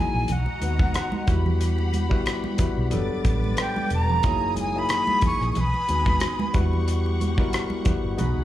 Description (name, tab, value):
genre	lush 1970s-style soul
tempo	91 BPM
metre	4/4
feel	swing 54% on 16ths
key	unclear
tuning	A4 = 441 Hz
part	breathy bright jazz flute	melody	0.0-6.6 s	F#5 to C#6	-26 LUFS	equal	slapback echo
part	bright studio string section	second line	0.0-8.4 s	A#3 to A6	-35 LUFS	left 1 dB	slapback echo
part	barky tine electric piano	accompaniment	0.0-8.4 s	F#3 to B4	-29 LUFS	left 3 dB	overdrive, slapback echo
part	vintage muted fingered electric bass	bass	0.1-8.4 s	E1 to E2	-25 LUFS	equal	none
part	damped 70s drum kit	drums	0.3-8.4 s	hi-hat, kick drum, rim click	-24 LUFS	equal	none
part	congas	percussion	0.3-8.4 s	none	-32 LUFS	right 4 dB	slapback echo
room	studio ambience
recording	live gig heard through the venue's PA, club reverb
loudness	-21 LUFS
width	side -13 dB against mid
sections	0.0-8.4 A section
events	none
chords	0.3 B6; 1.3 Emadd9; 2.9 Gmaj9; 4.2 F#13; 5.6 B6; 6.5 Emadd9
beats	0.29 0.95 | 1.60 2.26 2.92 3.58 | 4.24 4.90 5.56 6.21 | 6.87 7.53 8.19